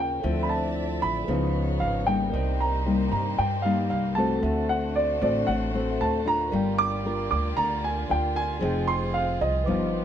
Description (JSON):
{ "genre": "bossa nova", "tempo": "114 BPM", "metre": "4/4", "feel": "straight", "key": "unclear", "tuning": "A4 = 440 Hz", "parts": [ { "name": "dark baby grand piano", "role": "melody", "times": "0.0-10.0 s", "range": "D5 to D6", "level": "-27 LUFS", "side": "right 2 dB", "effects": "none" }, { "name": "nylon-string guitar", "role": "accompaniment", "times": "0.0-10.0 s", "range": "G2 to Bb4", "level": "-28 LUFS", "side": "left 3 dB", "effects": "none" }, { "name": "tine electric piano", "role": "accompaniment", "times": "0.0-10.0 s", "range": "F4 to D6", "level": "-36 LUFS", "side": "right 6 dB", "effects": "none" }, { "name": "rich studio violin section", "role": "sustained chords", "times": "0.0-10.0 s", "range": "A3 to E5", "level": "-36 LUFS", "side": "left 1 dB", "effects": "none" }, { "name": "upright bass", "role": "bass", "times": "0.0-10.0 s", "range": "F1 to G2", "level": "-30 LUFS", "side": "equal", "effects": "none" } ], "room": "little or no reverb", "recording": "none", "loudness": "-23 LUFS", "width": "side -9 dB against mid", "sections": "0.0-10.0 A section", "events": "none", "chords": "0.2 Dm9; 1.3 Db9; 2.3 Cm7; 4.4 D7; 6.5 Gm7; 8.6 Fm7", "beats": "| 0.24 0.76 1.28 1.81 | 2.33 2.86 3.38 3.90 | 4.43 4.95 5.48 6.00 | 6.52 7.05 7.57 8.10 | 8.62 9.14 9.67" }